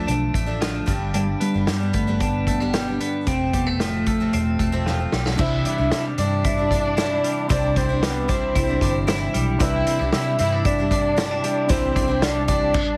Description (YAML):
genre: jangly indie pop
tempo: 114 BPM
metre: 4/4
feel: straight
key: unclear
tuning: A4 = 440 Hz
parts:
  - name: soft octave-layered synth lead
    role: melody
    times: 0.0-13.0 s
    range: F3 to E5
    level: -27 LUFS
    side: equal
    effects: chorus
  - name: picked twelve-string acoustic guitar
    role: accompaniment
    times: 0.0-12.8 s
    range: F2 to E4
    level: -31 LUFS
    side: equal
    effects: none
  - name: twelve-string electric guitar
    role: arpeggios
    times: 0.0-13.0 s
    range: G2 to E4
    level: -30 LUFS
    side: equal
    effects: lush chorus
  - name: vintage muted fingered electric bass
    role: bass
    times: 0.0-12.7 s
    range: E1 to C3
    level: -28 LUFS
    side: equal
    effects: none
  - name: vintage drum kit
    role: drums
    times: 0.1-12.9 s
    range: crash cymbal, hi-hat, kick drum, snare drum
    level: -27 LUFS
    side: equal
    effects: none
  - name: warm studio violin section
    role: second line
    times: 5.4-13.0 s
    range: B3 to E4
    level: -33 LUFS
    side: equal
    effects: none
  - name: warm upright piano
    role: accompaniment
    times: 5.4-12.8 s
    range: D4 to C5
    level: -37 LUFS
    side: equal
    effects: none
room: light reverb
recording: heavily compressed radio sound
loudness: -21 LUFS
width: mono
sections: 0.0-5.4 A section; 5.4-13.0 B section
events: drum fill 4.9-5.4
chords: 0.0 Dm; 0.9 G; 3.3 F; 5.4 Cadd9